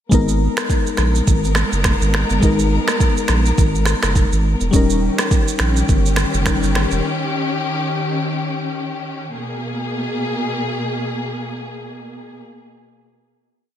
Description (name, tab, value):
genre	afrobeats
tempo	104 BPM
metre	4/4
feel	swing 58% on 16ths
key	G# harmonic minor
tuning	A4 = 439 Hz
part	crystalline FM electric piano	accompaniment	0.1-7.1 s	G3 to A#4	-21 LUFS	left 3 dB	chorus
part	warm studio string section	sustained chords	0.1-12.4 s	B2 to A#4	-23 LUFS	left 1 dB	sidechain pumping
part	saturated sub bass	bass	0.1-7.0 s	D#1 to A#1	-18 LUFS	right 1 dB	none
part	deep house drum kit	drums	0.1-7.0 s	finger snaps, kick drum, rim click, shaker	-18 LUFS	right 1 dB	gated reverb
room	moderate lush hall reverb, RT60 1.9 s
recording	bright 1980s-style digital production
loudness	-16 LUFS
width	side -10 dB against mid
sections	0.1-9.3 verse; 9.3-11.7 final chord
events	none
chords	0.1 G#madd9; 4.7 D#7; 9.3 G#madd9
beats	| 0.12 0.70 1.27 1.85 | 2.43 3.00 3.58 4.16 | 4.73 5.31 5.89 6.46 | 7.04 7.62 8.20 8.77 | 9.35 9.93 10.50 11.08